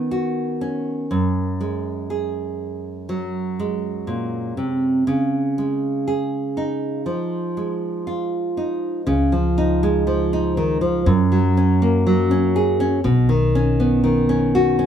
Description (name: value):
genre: acoustic folk-pop ballad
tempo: 60 BPM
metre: 4/4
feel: straight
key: Db major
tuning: A4 = 441 Hz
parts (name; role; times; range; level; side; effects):
- nylon-string guitar; accompaniment; 0.0-14.9 s; Gb2 to Ab4; -19 LUFS; right 1 dB; none
- upright bass; bass; 9.1-14.9 s; Cb2 to Gb2; -21 LUFS; equal; none
room: moderate studio reverb, RT60 0.7 s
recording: band playing live in one room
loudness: -18 LUFS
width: side -9 dB against mid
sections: 0.0-9.1 A section; 9.1-14.9 B section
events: none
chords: 0.0 Cbadd9; 1.1 Gbsus2; 5.1 Dbadd9; 11.1 Gb; 13.0 Cbadd9